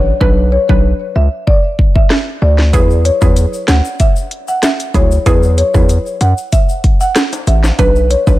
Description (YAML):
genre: dancehall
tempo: 95 BPM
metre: 4/4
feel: straight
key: E mixolydian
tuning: A4 = 441 Hz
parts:
  - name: hollow square pluck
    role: accompaniment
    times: 0.0-8.4 s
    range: F#3 to B4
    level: -19 LUFS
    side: right 5 dB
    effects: chorus
  - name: hard-hitting 808-style bass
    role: bass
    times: 0.0-8.4 s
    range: A1 to F#2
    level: -12 LUFS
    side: equal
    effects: none
  - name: marimba with medium mallets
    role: melody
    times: 0.2-8.4 s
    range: B4 to F#5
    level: -17 LUFS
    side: left 1 dB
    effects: digital delay
  - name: afro-pop drum kit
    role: drums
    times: 0.2-8.4 s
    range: hi-hat, kick drum, rim click, snare drum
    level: -13 LUFS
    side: equal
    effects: none
  - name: tube shaker and timbales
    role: percussion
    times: 2.7-8.4 s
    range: none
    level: -29 LUFS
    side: left 5 dB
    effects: none
room: little or no reverb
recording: none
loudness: -10 LUFS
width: side -16 dB against mid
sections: 0.0-8.4 A section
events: break 0.0-2.7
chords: 0.0 Bm; 2.7 Eadd9; 7.8 Bm